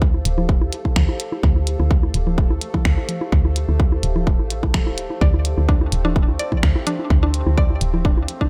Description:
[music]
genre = minimal techno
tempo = 127 BPM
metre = 4/4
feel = swing 53% on 16ths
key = D minor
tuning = A4 = 441 Hz
[part]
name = woody FM bass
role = bass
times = 0.0-8.3 s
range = D1 to D2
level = -22 LUFS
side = equal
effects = sidechain pumping
[part]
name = electronic kick drum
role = drums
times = 0.0-8.5 s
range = none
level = -20 LUFS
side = equal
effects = none
[part]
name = bubbling stepped-filter texture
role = texture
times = 0.0-8.5 s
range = A3 to A4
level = -38 LUFS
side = equal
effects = chorus, built-in reverb, sidechain pumping
[part]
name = warbly tape-like pad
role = texture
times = 0.0-8.5 s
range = G4 to F5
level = -35 LUFS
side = equal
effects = chorus, built-in reverb, sidechain pumping
[part]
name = bongos and congas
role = percussion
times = 0.1-8.5 s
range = none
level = -30 LUFS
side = equal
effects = analog delay
[part]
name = minimal click drum kit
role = drums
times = 0.3-8.4 s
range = finger snaps, hi-hat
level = -30 LUFS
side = equal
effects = tape echo
[part]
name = mallet-like synth pluck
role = riff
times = 5.2-8.4 s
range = D4 to D5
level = -30 LUFS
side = equal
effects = chorus, sidechain pumping, analog delay
[sound]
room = little or no reverb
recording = echo-heavy mix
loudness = -19 LUFS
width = mono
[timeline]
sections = 0.0-8.5 A section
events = none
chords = 0.0 Dm7

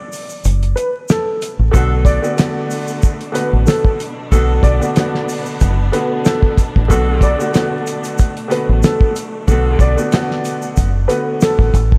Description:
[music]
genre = hip hop, boom-bap hip-hop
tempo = 93 BPM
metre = 4/4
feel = swing 55% on 16ths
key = B minor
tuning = A4 = 442 Hz
[part]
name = dark upright piano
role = melody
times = 0.0-11.7 s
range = A4 to D5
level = -24 LUFS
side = equal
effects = analog chorus, high-pass filter, low-pass filter, diffuse ambient delay
[part]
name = cloth-damped thuddy drum kit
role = drums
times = 0.1-12.0 s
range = hi-hat, kick drum, rim click, snare drum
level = -17 LUFS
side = equal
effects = none
[part]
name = tube shaker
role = percussion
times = 0.1-11.9 s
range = none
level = -37 LUFS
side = equal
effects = none
[part]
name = deep dub fingered electric bass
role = bass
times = 0.4-12.0 s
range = F#1 to B1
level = -17 LUFS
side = equal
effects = none
[part]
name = warm grand piano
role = accompaniment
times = 1.7-11.7 s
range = D3 to F#4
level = -23 LUFS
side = equal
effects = cassette tape, high-pass filter, low-pass filter
[part]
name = rich studio string section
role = sustained chords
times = 1.7-12.0 s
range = B2 to D4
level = -31 LUFS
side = equal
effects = high-pass filter, low-pass filter
[part]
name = clear saxophone section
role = stabs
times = 1.7-9.9 s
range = D4 to A4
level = -31 LUFS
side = equal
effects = high-pass filter, low-pass filter, diffuse ambient delay
[sound]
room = light reverb, small room ambience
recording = vinyl crackle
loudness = -16 LUFS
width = mono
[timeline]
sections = 0.0-12.0 A section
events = break 0.0-1.7; kick muted 0.4-1.7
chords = 0.0 Bm7

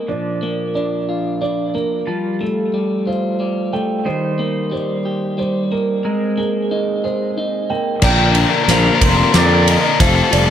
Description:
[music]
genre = post-rock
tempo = 60 BPM (dotted quarters)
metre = 6/8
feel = straight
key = Bb major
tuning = A4 = 438 Hz
[part]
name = pedal steel guitar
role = sustained chords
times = 0.0-10.5 s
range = D3 to A5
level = -24 LUFS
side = right 2 dB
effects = wide subtle chorus
[part]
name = electric guitar through a small old amp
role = arpeggios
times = 0.0-10.5 s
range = Bb2 to Ab4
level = -22 LUFS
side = left 1 dB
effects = tape echo
[part]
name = felt-muted upright piano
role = arpeggios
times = 0.1-10.5 s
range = Ab4 to D6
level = -24 LUFS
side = right 5 dB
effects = tape echo
[part]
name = clean lap steel guitar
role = melody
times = 8.0-10.5 s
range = C5 to G5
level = -20 LUFS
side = right 2 dB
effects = tape echo
[part]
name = overdriven electric guitar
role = riff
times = 8.0-10.5 s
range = D4 to Bb4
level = -16 LUFS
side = left 9 dB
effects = none
[part]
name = fuzz fingered electric bass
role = bass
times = 8.0-10.5 s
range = F1 to F2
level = -16 LUFS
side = equal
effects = overdrive
[part]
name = loose indie drum kit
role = drums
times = 8.0-10.5 s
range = crash cymbal, kick drum, ride cymbal, snare drum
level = -17 LUFS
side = equal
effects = none
[sound]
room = light reverb, small room ambience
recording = none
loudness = -15 LUFS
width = side -9 dB against mid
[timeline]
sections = 0.0-8.0 A section; 8.0-10.5 B section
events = build-up 8.0-10.5; drum fill 8.0-10.5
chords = 0.1 Bb; 2.1 Fadd9; 4.1 Eb6; 6.0 Abadd9; 8.0 Bb

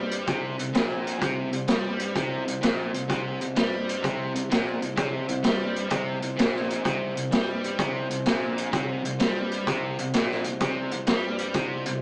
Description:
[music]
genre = blues rock power trio and southern rock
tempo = 128 BPM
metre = 4/4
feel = swing 67% on 8ths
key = C minor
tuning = A4 = 441 Hz
[part]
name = mellow tonewheel organ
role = sustained chords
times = 0.0-12.0 s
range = C4 to Db5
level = -36 LUFS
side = equal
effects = slow rotary speaker
[part]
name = distorted electric guitar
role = riff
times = 0.0-12.0 s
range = Bb2 to G3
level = -33 LUFS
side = equal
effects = distortion
[part]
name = fuzz picked electric bass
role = bass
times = 0.0-12.0 s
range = Bb1 to G2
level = -37 LUFS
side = equal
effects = overdrive
[part]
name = vintage drum kit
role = drums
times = 0.1-11.9 s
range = hi-hat, kick drum, snare drum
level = -29 LUFS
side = equal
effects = none
[sound]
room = moderate stone room reverb, RT60 1.3 s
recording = rough rehearsal-room recording, small speaker sound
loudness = -27 LUFS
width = mono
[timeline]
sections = 0.0-12.0 A section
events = none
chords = 0.0 Cm

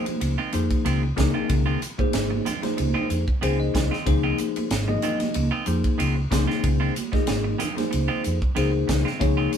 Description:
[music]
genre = electric jazz fusion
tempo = 93 BPM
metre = 4/4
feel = swing 54% on 16ths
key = Db major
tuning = A4 = 436 Hz
[part]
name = bell-like tine electric piano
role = accompaniment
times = 0.0-9.6 s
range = F3 to Ab5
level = -26 LUFS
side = left 3 dB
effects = phaser
[part]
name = clean electric guitar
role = stabs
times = 0.0-9.6 s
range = Eb3 to F4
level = -30 LUFS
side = right 4 dB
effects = none
[part]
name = crisp fusion drum kit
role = drums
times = 0.1-9.6 s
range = hi-hat, kick drum, ride cymbal, snare drum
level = -27 LUFS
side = right 1 dB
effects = none
[part]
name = congas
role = percussion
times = 0.1-9.6 s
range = none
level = -33 LUFS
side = right 5 dB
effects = none
[part]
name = woody fretless electric bass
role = bass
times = 0.2-9.5 s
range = Ab1 to F2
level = -25 LUFS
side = equal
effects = none
[sound]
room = moderate studio reverb, RT60 0.5 s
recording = band playing live in one room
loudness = -21 LUFS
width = side -8 dB against mid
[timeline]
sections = 0.0-9.6 A section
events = tine electric piano fill 3.1-4.1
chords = 0.0 Dbmaj9

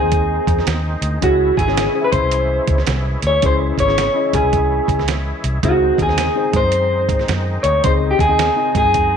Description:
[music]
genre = uptempo 1960s-style soul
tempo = 109 BPM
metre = 4/4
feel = swing 64% on 8ths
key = C# harmonic minor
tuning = A4 = 440 Hz
[part]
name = electric guitar through a small old amp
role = melody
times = 0.0-9.2 s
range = F#4 to C#5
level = -17 LUFS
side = equal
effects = none
[part]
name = tine electric piano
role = accompaniment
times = 0.0-9.2 s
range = C#3 to E5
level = -24 LUFS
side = left 11 dB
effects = overdrive, fast stereo tremolo
[part]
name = overdriven tonewheel organ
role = sustained chords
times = 0.0-9.2 s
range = D#3 to E4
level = -28 LUFS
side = equal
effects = chorus vibrato, lush chorus
[part]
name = vintage muted fingered electric bass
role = bass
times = 0.0-9.2 s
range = G#1 to G#2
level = -20 LUFS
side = equal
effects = none
[part]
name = dusty soul sampler-style drum kit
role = drums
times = 0.1-9.1 s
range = hi-hat, kick drum, snare drum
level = -21 LUFS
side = right 3 dB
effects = none
[sound]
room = moderate echo chamber reverb, RT60 1.3 s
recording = 1960s-style stereo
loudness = -14 LUFS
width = side -7 dB against mid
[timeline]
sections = 0.0-9.2 A section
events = none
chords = 0.0 G#; 1.2 C#m; 5.6 G#/C#

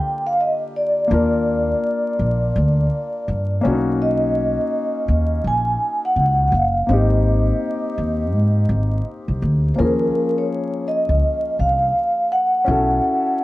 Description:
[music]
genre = hip hop, jazz-hop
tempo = 83 BPM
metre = 4/4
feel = swing 62% on 16ths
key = unclear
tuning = A4 = 441 Hz
[part]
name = vibraphone with soft mallets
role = melody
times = 0.0-13.4 s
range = Bb4 to Ab5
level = -20 LUFS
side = equal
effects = none
[part]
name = dark grand piano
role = accompaniment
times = 0.0-13.4 s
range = D3 to Bb4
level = -24 LUFS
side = left 3 dB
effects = none
[part]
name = upright bass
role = bass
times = 1.1-13.0 s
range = F#1 to Ab2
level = -19 LUFS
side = equal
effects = none
[sound]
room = light reverb, small room ambience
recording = vinyl crackle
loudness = -17 LUFS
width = side -17 dB against mid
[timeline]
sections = 0.0-9.8 A section; 9.8-13.4 B section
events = none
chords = 0.0 Ebmaj9; 3.6 Bmaj9; 6.9 Abmaj9; 9.8 Eb9sus4; 12.7 B9sus4

